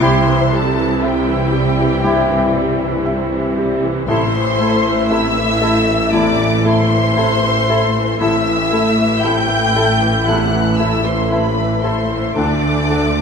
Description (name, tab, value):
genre	cinematic, emotional film score for orchestra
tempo	58 BPM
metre	4/4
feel	rubato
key	unclear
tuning	A4 = 444 Hz
part	rich studio violin section	melody	0.0-13.2 s	G5 to G6	-21 LUFS	left 1 dB	none
part	mellow cor anglais	second line	0.0-13.0 s	G4 to A4	-26 LUFS	right 4 dB	none
part	mellow hollow wooden flute	second line	0.0-13.0 s	E5 to F#5	-26 LUFS	left 3 dB	none
part	warm clarinet	second line	0.0-13.1 s	D4 to E4	-26 LUFS	left 1 dB	none
part	warm studio violin section	second line	0.0-13.2 s	G4 to G5	-23 LUFS	left 5 dB	none
part	felt-muted upright piano	accompaniment	0.0-13.2 s	A1 to E5	-22 LUFS	left 3 dB	none
part	rich studio viola section	accompaniment	0.0-13.2 s	C3 to E4	-22 LUFS	right 1 dB	none
part	mellow French horn section	sustained chords	0.0-13.2 s	G3 to E4	-21 LUFS	left 3 dB	none
part	rich studio cello section	bass	0.0-13.2 s	A2 to D3	-21 LUFS	right 3 dB	none
part	rich studio double bass section	bass	0.0-13.2 s	A1 to D2	-22 LUFS	right 3 dB	none
room	wet scoring stage reverb, RT60 1.7 s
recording	none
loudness	-13 LUFS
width	side -6 dB against mid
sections	0.0-13.2 A section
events	none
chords	0.0 C; 4.1 Am; 12.4 D